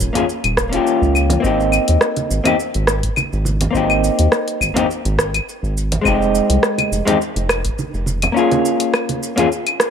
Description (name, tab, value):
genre	sunset chillout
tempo	104 BPM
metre	4/4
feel	swing 54% on 16ths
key	Ab major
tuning	A4 = 440 Hz
part	vintage hollow-body jazz guitar	accompaniment	0.0-9.5 s	Ab3 to Ab4	-18 LUFS	left 1 dB	auto-pan, vintage 12-bit sampler grit, ping-pong delay
part	round analog bass	bass	0.0-8.3 s	Eb1 to Eb2	-19 LUFS	equal	none
part	deep house drum kit	drums	0.0-9.9 s	claves, hi-hat, rim click, shaker	-20 LUFS	left 1 dB	overdrive
part	congas	percussion	0.2-9.5 s	none	-25 LUFS	right 3 dB	none
part	electronic kick drum	drums	0.6-7.8 s	none	-26 LUFS	equal	none
room	light reverb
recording	none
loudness	-15 LUFS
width	side -7 dB against mid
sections	0.0-9.9 A section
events	none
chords	0.0 Eb7sus4; 1.4 Abmaj7; 6.0 Fm7; 8.4 Bbm7